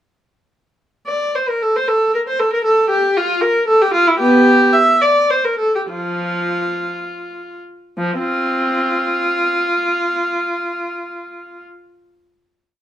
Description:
classical, baroque-style suite movement for unaccompanied viola; 54-80 BPM (dotted quarters); 6/8; rubato; F major; A4 = 440 Hz
rich viola; solo; 1.1-11.6 s; F3 to E5; -14 LUFS; equal
moderate stone room reverb, RT60 0.9 s; dark, warm production; -14 LUFS; side -11 dB against mid
1.1-8.0 A section; 8.0-12.2 final chord
slowing down 3.4-8.0

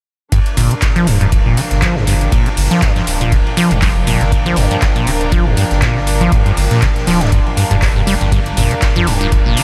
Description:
acid house; 120 BPM; 4/4; swing 56% on 16ths; G minor; A4 = 439 Hz
liquid acid bass; riff; 0.3-9.6 s; G2 to G3; -18 LUFS; equal; phaser, overdrive, diffuse ambient delay
electro analog drum machine; drums; 0.3-9.6 s; handclaps, hi-hat, toms; -24 LUFS; equal
electronic kick drum; drums; 0.3-9.4 s; -18 LUFS; equal
raw garage drum kit; drums; 0.3-9.6 s; hi-hat, ride cymbal, snare drum; -30 LUFS; equal; sidechain pumping on cymbals, high-pass filter on cymbals, sidechain pumping on hats, high-pass filter on hats, high-pass filter on snare, high-pass filter on room
rich chamber string section; texture; 0.3-9.6 s; D4 to Bb5; -25 LUFS; equal; sidechain pumping
round analog bass; bass; 0.6-9.5 s; D1 to G1; -20 LUFS; equal; sidechain pumping
moderate huge ambient reverb, RT60 5.1 s; dreamy mix soaked in reverb; -14 LUFS; mono
0.3-9.6 A section
0.3 Gm7

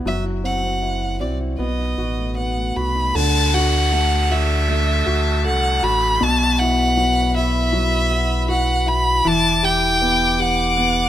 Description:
pop ballad; 79 BPM; 4/4; straight; A4 = 440 Hz
clear grand piano; accompaniment; 0.0-11.1 s; B2 to A4; -24 LUFS; equal
fingerpicked steel-string acoustic guitar; arpeggios; 0.0-11.1 s; F#2 to F#4; -30 LUFS; left 3 dB
rich violin; melody; 0.1-11.1 s; D5 to B5; -20 LUFS; equal
sub bass with octave; bass; 0.1-11.1 s; E1 to D2; -22 LUFS; equal
warm studio violin section; second line; 3.1-11.1 s; F5 to D6; -28 LUFS; left 4 dB
downlifter; sound effects; 3.2-9.3 s; -28 LUFS; equal
small room reverb; rough home demo mix; -16 LUFS; side -11 dB against mid
0.0-3.1 A section; 3.1-11.1 B section
0.1 D9/F# (rootless); 1.6 B7; 3.1 Dadd9; 6.2 Bsus4; 9.3 Emadd9

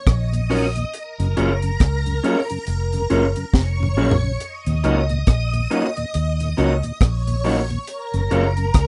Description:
lovers rock reggae; 69 BPM; 4/4; swing 59% on 16ths; F# major; A4 = 440 Hz
phased string machine; second line; 0.0-8.9 s; A#4 to D#6; -31 LUFS; equal; ensemble chorus, phaser
vintage muted fingered electric bass; bass; 0.1-8.9 s; E#1 to D#2; -23 LUFS; equal
deep reggae drum kit; drums; 0.1-8.9 s; hi-hat, kick drum, rim click, snare drum, toms; -22 LUFS; equal
mellow tonewheel organ; accompaniment; 0.3-8.7 s; D#2 to E#4; -28 LUFS; equal; slow rotary speaker
tine electric piano; accompaniment; 0.5-8.5 s; C#4 to A#4; -28 LUFS; equal
electric guitar through a small old amp; stabs; 0.5-8.5 s; A#3 to C#5; -24 LUFS; equal
little or no reverb; rough home demo mix, nothing above 10.9 kHz; -21 LUFS; mono
0.0-8.9 A section
drum fill 3.5-4.4
0.0 D#m7; 0.9 F#maj7; 4.4 D#m7; 7.9 F#maj7

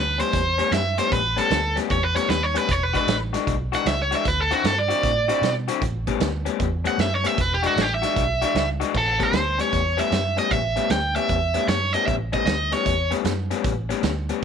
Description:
electric blues shuffle; 153 BPM; 4/4; swing 65% on 8ths; A mixolydian; A4 = 445 Hz
overdriven electric guitar; melody; 0.0-13.1 s; F#4 to G5; -22 LUFS; right 2 dB
electric guitar through a small old amp; riff; 0.0-14.4 s; A2 to F#4; -26 LUFS; left 13 dB
vintage muted fingered electric bass; bass; 0.0-14.3 s; E1 to B2; -27 LUFS; right 1 dB
vintage drum kit; drums; 0.2-14.4 s; crash cymbal, hi-hat, kick drum, snare drum; -28 LUFS; right 4 dB
light reverb, small room reverb; 1960s-style stereo; -20 LUFS; side -7 dB against mid
0.0-8.9 A section; 8.9-14.4 B section
overdriven electric guitar solo 0.0-8.9
0.0 A9; 2.7 E9; 4.2 D9; 5.8 A9; 7.4 E9; 8.9 A9

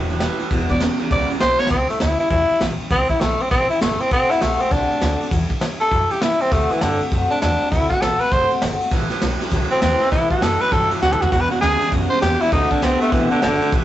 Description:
rockabilly; 200 BPM; 4/4; swing 62% on 8ths; A mixolydian; A4 = 439 Hz
picked steel-string acoustic guitar; accompaniment; 0.0-13.8 s; E2 to F#4; -26 LUFS; left 3 dB
electric guitar through a small old amp; riff; 0.0-1.7, 8.9-13.8 s; E2 to B3; -23 LUFS; right 2 dB
upright bass; bass; 0.0-13.8 s; E1 to G2; -25 LUFS; equal
vintage brush drum kit; drums; 0.1-13.8 s; kick drum, ride cymbal, snare drum, toms; -23 LUFS; equal
growling tenor saxophone; melody; 0.7-13.7 s; D3 to D5; -18 LUFS; equal
moderate stone room reverb, RT60 1.0 s; rough rehearsal-room recording, warm saturation, nothing above 8.0 kHz; -16 LUFS; side -13 dB against mid
0.0-1.7 A section; 1.7-13.8 B section
drum fill 1.6, 11.0; tenor saxophone solo 1.7-13.8
0.0 A7; 0.5 E7; 1.7 A7; 4.1 D7; 5.3 A7; 6.5 D7; 8.9 A7; 11.3 E7; 12.5 D7

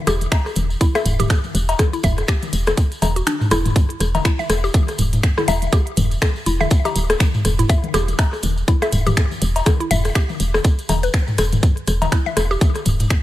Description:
minimal techno; 122 BPM; 4/4; swing 58% on 16ths; E minor; A4 = 440 Hz
mallet-like synth pluck; riff; 0.1-12.5 s; D4 to E5; -25 LUFS; equal; chorus, sidechain pumping, ping-pong delay
woody FM bass; bass; 0.1-13.1 s; D1 to E1; -20 LUFS; equal; sidechain pumping
minimal click drum kit; drums; 0.1-13.2 s; finger snaps, hi-hat; -27 LUFS; equal; overdrive
booming analog drum machine; percussion; 0.1-13.1 s; cowbell, rim click, toms; -22 LUFS; left 2 dB
tambourine; percussion; 0.1-13.2 s; -32 LUFS; left 1 dB
electronic kick drum; drums; 0.3-13.2 s; -16 LUFS; equal; overdrive
digital ambience; lossy compression artefacts; -16 LUFS; side -14 dB against mid
0.0-13.2 A section
kick drops out 3.3-3.8

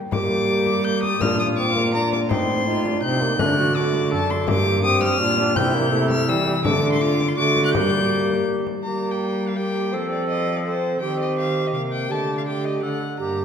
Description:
classical, renaissance-style consort dance; 165 BPM; 3/4; straight; G minor; A4 = 436 Hz
rich violin; melody; 0.1-13.4 s; C5 to G6; -24 LUFS; left 3 dB
tenor recorder; second line; 0.1-13.4 s; D4 to A4; -26 LUFS; right 3 dB
clear trombone; accompaniment; 0.1-13.4 s; G3 to Eb4; -26 LUFS; left 2 dB
rich cello; bass; 0.1-13.4 s; F#2 to G3; -24 LUFS; right 1 dB
frame drum; percussion; 0.1-8.8 s; -28 LUFS; left 4 dB
wet concert hall reverb, RT60 2.0 s; -19 LUFS; side -7 dB against mid
0.1-8.8 A section; 8.8-13.4 B section
0.1 Gm; 1.2 Bb; 2.3 Adim; 3.4 D; 4.5 Gm; 5.6 C; 6.7 D5; 7.7 Gm; 9.9 F; 11.0 Cm/Eb; 12.1 Dsus4

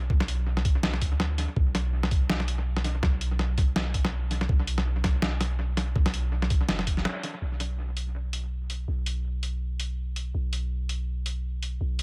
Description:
half-time drum and bass; 164 BPM; 4/4; swing 57% on 16ths, half-time; B minor; A4 = 442 Hz
long sustained 808-style bass; bass; 0.0-12.0 s; F#1 to D2; -31 LUFS; equal
electronic kick drum; drums; 0.1-7.0 s; -28 LUFS; equal
boom bap sampler-style drum kit; drums; 0.2-12.0 s; hi-hat, snare drum; -33 LUFS; equal; analog delay
light reverb; echo-heavy mix; -28 LUFS; mono
0.0-7.4 A section; 7.4-12.0 B section
drop 0.0-7.4; break 7.1-7.4; band accent 7.1

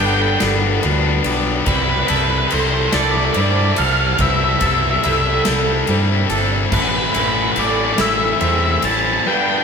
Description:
post-rock; 48 BPM (dotted quarters); 6/8; straight; A minor; A4 = 440 Hz
octave-fuzz lead guitar; melody; 0.0-9.6 s; B4 to A5; -20 LUFS; right 1 dB; distortion
airy breathy pad; sustained chords; 0.0-9.6 s; C4 to B5; -31 LUFS; right 5 dB; chorus
twangy electric guitar; arpeggios; 0.0-9.6 s; G2 to A4; -26 LUFS; right 2 dB
vibraphone with hard mallets; arpeggios; 0.0-9.6 s; A4 to C5; -27 LUFS; right 5 dB
distorted electric guitar; riff; 0.0-9.6 s; G2 to E4; -19 LUFS; left 5 dB; overdrive
growling fingered electric bass; bass; 0.0-9.2 s; G1 to G2; -21 LUFS; right 1 dB; overdrive
huge arena drum kit; drums; 0.4-9.0 s; crash cymbal, kick drum, ride cymbal, snare drum; -24 LUFS; equal
wet studio reverb, RT60 0.8 s; band playing live in one room; -14 LUFS; side -6 dB against mid
0.0-9.6 A section
0.0 G; 1.7 C6; 6.7 Amadd9

